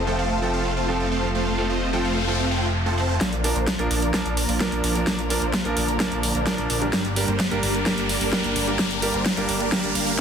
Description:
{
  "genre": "EDM, festival progressive house",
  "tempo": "129 BPM",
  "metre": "4/4",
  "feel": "straight",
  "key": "Bb major",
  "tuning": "A4 = 439 Hz",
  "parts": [
    { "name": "muted studio string section", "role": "sustained chords", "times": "0.0-10.2 s", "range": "C3 to A5", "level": "-32 LUFS", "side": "left 2 dB", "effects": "sidechain pumping" },
    { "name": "supersaw chords", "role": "riff", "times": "0.0-10.1 s", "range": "F3 to A5", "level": "-26 LUFS", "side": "right 1 dB", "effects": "phaser, sidechain pumping, low-pass filter, ping-pong delay" },
    { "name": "fat analog bass", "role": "bass", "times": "0.0-10.2 s", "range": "F1 to Bb1", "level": "-28 LUFS", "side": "left 1 dB", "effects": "sidechain pumping" },
    { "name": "bright concert grand piano", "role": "accompaniment", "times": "0.1-10.2 s", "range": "F3 to Bb4", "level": "-28 LUFS", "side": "right 3 dB", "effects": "sidechain pumping, ping-pong delay" },
    { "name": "big-room dance drum kit", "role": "drums", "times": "0.2-10.2 s", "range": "hi-hat, snare drum", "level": "-26 LUFS", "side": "equal", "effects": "low-pass filter on hats, low-pass filter on snare, low-pass filter on room" },
    { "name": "noise sweep and riser", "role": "sound effects", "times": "2.0-10.2 s", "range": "none", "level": "-32 LUFS", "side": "equal", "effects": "none" },
    { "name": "electronic kick drum", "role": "drums", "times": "3.2-10.2 s", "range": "none", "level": "-30 LUFS", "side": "equal", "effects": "high-pass filter on kick, high-pass filter on room" }
  ],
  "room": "light reverb",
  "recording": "dense, heavily limited modern master",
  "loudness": "-20 LUFS",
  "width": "side -7 dB against mid",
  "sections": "0.0-3.2 A section; 3.2-10.2 B section",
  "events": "noise sweep 2.0-3.2; build-up 3.2-10.2; drum fill 3.2-10.2; riser 3.2-10.2",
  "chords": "0.0 F; 3.2 Bb; 6.9 Gm"
}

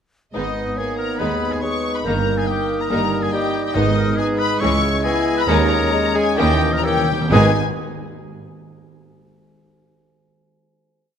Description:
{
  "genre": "classical, dramatic, fast romantic movement for symphony orchestra",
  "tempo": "125-142 BPM",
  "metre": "4/4",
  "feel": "straight",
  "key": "G# minor",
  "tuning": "A4 = 441 Hz",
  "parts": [
    { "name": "warm symphonic violin section", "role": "melody", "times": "0.3-7.6 s", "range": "D#5 to C#6", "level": "-24 LUFS", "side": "left 6 dB", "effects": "none" },
    { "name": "bright concert flute", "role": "second line", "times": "0.3-7.6 s", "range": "D#6 to G6", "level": "-29 LUFS", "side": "left 1 dB", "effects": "none" },
    { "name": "warm clarinet", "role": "second line", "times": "0.3-7.5 s", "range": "G#4 to D#5", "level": "-28 LUFS", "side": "left 2 dB", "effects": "none" },
    { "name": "warm symphonic violin section", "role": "second line", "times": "0.3-7.6 s", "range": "A#3 to G#4", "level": "-29 LUFS", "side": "left 3 dB", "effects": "none" },
    { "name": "mellow bassoon", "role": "accompaniment", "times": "0.3-7.5 s", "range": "G3 to B3", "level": "-25 LUFS", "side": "right 2 dB", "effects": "none" },
    { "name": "rich symphonic viola section", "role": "accompaniment", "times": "0.3-7.6 s", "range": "D#3 to A#3", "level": "-27 LUFS", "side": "right 2 dB", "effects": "none" },
    { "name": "rich symphonic cello section", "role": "bass", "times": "0.3-7.6 s", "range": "C#2 to G#2", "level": "-26 LUFS", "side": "right 2 dB", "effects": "none" },
    { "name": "rich symphonic double bass section", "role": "bass", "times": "0.3-7.6 s", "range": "G1 to D#2", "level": "-24 LUFS", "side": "right 4 dB", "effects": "none" },
    { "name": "clear oboe", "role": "second line", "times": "0.4-7.5 s", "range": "D#4 to C#5", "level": "-28 LUFS", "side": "right 1 dB", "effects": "none" },
    { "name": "warm French horn section", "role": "sustained chords", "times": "0.4-7.5 s", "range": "D#3 to E4", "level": "-26 LUFS", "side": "left 4 dB", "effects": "none" },
    { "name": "timpani", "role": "percussion", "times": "3.8-7.5 s", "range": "G#2 to D#3", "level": "-27 LUFS", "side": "equal", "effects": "none" }
  ],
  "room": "moderate concert hall reverb, RT60 2.2 s",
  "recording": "none",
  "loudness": "-16 LUFS",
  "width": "side -8 dB against mid",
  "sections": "0.3-7.3 A section; 7.3-9.2 final chord",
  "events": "slowing down 2.9-7.3; timpani fill 6.4-7.3",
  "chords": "0.3 G#m; 2.1 D#/G; 3.7 G#m; 4.6 C#m; 5.5 D#7sus4; 6.4 D#7b9; 7.3 G#m"
}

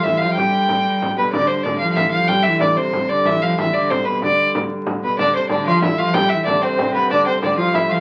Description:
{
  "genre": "medieval dance",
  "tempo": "125 BPM (dotted quarters)",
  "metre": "6/8",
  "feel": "straight",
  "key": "G mixolydian",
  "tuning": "A4 = 439 Hz",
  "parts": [
    { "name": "rich fiddle", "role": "melody", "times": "0.0-8.0 s", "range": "B4 to G5", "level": "-20 LUFS", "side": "equal", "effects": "none" },
    { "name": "lute", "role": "second line", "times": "0.0-1.1, 5.2-8.0 s", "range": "B3 to G4", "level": "-26 LUFS", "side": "equal", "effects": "none" },
    { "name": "warm viola da gamba", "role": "second line", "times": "0.0-8.0 s", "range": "B2 to G3", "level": "-26 LUFS", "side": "equal", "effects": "none" },
    { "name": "dark hurdy-gurdy", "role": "drone", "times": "0.0-8.0 s", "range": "G2 to D3", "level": "-29 LUFS", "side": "equal", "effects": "none" },
    { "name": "frame drum", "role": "percussion", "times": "0.1-7.9 s", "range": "none", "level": "-29 LUFS", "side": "equal", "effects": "none" }
  ],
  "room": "wet studio ambience, RT60 0.4 s",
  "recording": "very old 78 rpm record, vinyl crackle",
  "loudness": "-18 LUFS",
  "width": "mono",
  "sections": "0.0-1.3 A section; 1.3-8.0 A section",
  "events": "none",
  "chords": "none"
}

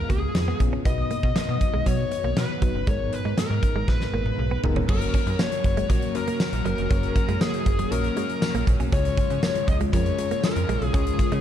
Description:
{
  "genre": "1980s-style pop",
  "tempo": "119 BPM",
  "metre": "4/4",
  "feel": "straight",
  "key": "F# major",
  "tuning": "A4 = 440 Hz",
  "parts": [
    { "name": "bluesy overdriven lead guitar", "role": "melody", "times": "0.0-11.4 s", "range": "G#4 to D#5", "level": "-29 LUFS", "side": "left 3 dB", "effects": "distortion, ping-pong delay" },
    { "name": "FM electric piano with tremolo", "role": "accompaniment", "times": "0.0-11.4 s", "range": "G#2 to C#5", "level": "-32 LUFS", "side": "left 6 dB", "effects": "none" },
    { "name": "string machine, cellos", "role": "sustained chords", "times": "0.0-11.4 s", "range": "B2 to A#5", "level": "-34 LUFS", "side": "equal", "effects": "ensemble chorus" },
    { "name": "slap-like FM bass", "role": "bass", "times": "0.0-11.4 s", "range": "E#1 to C#3", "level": "-27 LUFS", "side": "equal", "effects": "none" },
    { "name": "direct-recorded clean electric guitar", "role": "riff", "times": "0.1-11.4 s", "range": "E#3 to C#4", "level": "-33 LUFS", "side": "right 6 dB", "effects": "analog chorus" },
    { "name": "huge arena drum kit", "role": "drums", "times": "0.1-11.4 s", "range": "crash cymbal, hi-hat, kick drum, snare drum, tambourine, toms", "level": "-24 LUFS", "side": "equal", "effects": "none" },
    { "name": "biting overdriven guitar", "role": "accompaniment", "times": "4.9-11.4 s", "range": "C#3 to F#4", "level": "-37 LUFS", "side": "equal", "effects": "lush chorus" }
  ],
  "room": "studio ambience",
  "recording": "dark, warm production",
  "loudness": "-21 LUFS",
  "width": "side -10 dB against mid",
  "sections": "0.0-4.9 A section; 4.9-11.4 B section",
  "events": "drum fill 3.9-4.9",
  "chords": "0.0 C#7; 0.9 B; 2.9 G#madd9; 4.9 F#; 8.9 C#"
}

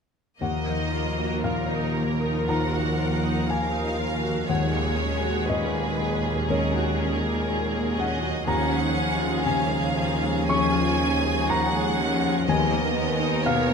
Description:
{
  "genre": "cinematic",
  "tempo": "60 BPM",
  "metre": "4/4",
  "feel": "rubato",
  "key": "Eb minor",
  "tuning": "A4 = 441 Hz",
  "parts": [
    { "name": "rich symphonic violin section", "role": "melody", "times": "0.4-13.7 s", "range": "Ab4 to Bb4", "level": "-33 LUFS", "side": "left 1 dB", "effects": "none" },
    { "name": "rich symphonic violin section", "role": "second line", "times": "0.4-13.7 s", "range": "Bb4 to Ab5", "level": "-30 LUFS", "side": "right 1 dB", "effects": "none" },
    { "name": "felt-muted upright piano", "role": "accompaniment", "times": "0.4-13.7 s", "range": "Eb2 to Db6", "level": "-28 LUFS", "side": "left 3 dB", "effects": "none" },
    { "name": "rich symphonic viola section", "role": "accompaniment", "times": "0.4-13.7 s", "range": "F3 to Gb4", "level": "-32 LUFS", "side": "right 3 dB", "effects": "none" },
    { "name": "mellow French horn section", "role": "sustained chords", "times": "0.4-13.7 s", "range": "Bb2 to Db4", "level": "-31 LUFS", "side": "left 3 dB", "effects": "none" },
    { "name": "concert harp", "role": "arpeggios", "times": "0.4-13.7 s", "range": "Eb3 to Bb5", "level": "-32 LUFS", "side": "left 9 dB", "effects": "none" },
    { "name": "rich symphonic cello section", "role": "bass", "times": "0.4-13.7 s", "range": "Eb2", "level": "-31 LUFS", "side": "right 4 dB", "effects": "none" },
    { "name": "rich symphonic double bass section", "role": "bass", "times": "0.4-13.7 s", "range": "Eb2", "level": "-31 LUFS", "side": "right 4 dB", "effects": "none" }
  ],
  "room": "moderate recital hall reverb, RT60 1.8 s",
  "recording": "close, detailed microphones",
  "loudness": "-22 LUFS",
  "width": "side -6 dB against mid",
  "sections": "0.4-13.7 A section",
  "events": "none",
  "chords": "0.4 Ebmadd9; 4.5 Gbadd9/Eb; 8.5 Db/Eb; 12.5 Abmadd9/Eb"
}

